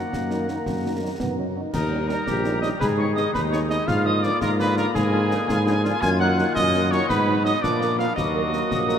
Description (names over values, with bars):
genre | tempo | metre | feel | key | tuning
military-style march for wind band | 112 BPM (dotted quarters) | 6/8 | straight | Eb minor | A4 = 440 Hz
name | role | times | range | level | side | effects
warm cornet | melody | 0.0-9.0 s | Ab4 to Ab5 | -27 LUFS | equal | none
warm woodwind section | second line | 0.0-9.0 s | D4 to Bb5 | -30 LUFS | left 3 dB | none
warm trombone section | sustained chords | 0.0-9.0 s | D3 to Cb4 | -30 LUFS | equal | none
mellow tuba | bass | 0.0-9.0 s | Bb1 to Bb2 | -25 LUFS | equal | none
warm euphonium | second line | 0.1-1.7 s | Bb3 to Eb4 | -33 LUFS | right 1 dB | none
concert snare drum, concert bass drum and clash cymbals | drums | 0.1-9.0 s | none | -32 LUFS | equal | none
mellow French horn section | accompaniment | 0.3-8.9 s | F3 to Bb4 | -31 LUFS | right 3 dB | none
piccolo | second line | 1.7-9.0 s | Ab5 to Ab6 | -27 LUFS | right 1 dB | none
room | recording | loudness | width
wet cathedral reverb, RT60 5.9 s | in a vast, echoing space | -20 LUFS | side -8 dB against mid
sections
0.0-1.7 A section; 1.7-9.0 A section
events
none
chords
0.0 Ebm/Gb; 1.7 Eb7; 2.8 Abm; 3.9 Bb7/Ab; 6.0 Ebm/Gb; 7.1 Abm7; 7.6 Bb; 8.2 Ebm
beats
0.12 | 0.66 1.20 | 1.73 2.27 | 2.80 3.34 | 3.88 4.41 | 4.95 5.49 | 6.02 6.56 | 7.10 7.63 | 8.17 8.71